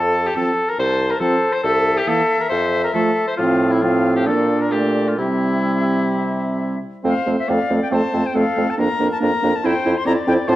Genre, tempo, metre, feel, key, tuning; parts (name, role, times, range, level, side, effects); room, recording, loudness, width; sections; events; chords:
quick classical-period movement for wind quintet; 126-144 BPM; 4/4; rubato; F major; A4 = 440 Hz
silver concert flute; melody; 0.0-10.6 s; C5 to C6; -25 LUFS; left 4 dB
warm oboe; second line; 0.0-10.6 s; E4 to D5; -22 LUFS; left 1 dB
warm bassoon; bass; 0.0-10.6 s; C2 to C3; -22 LUFS; right 1 dB
warm French horn; accompaniment; 0.4-10.6 s; E3 to C4; -23 LUFS; equal
warm clarinet; accompaniment; 0.4-10.6 s; A3 to F4; -22 LUFS; right 3 dB
moderate recital hall reverb, RT60 1.4 s; worn, warbling old tape, cassette tape, warbly pitch drift; -16 LUFS; side -15 dB against mid
0.0-7.0 A section; 7.0-10.6 B section
0.0 F; 1.6 C7; 2.5 F; 3.4 F/A; 4.3 Bb; 5.2 C; 7.0 F; 8.8 Bb/F; 9.6 C/F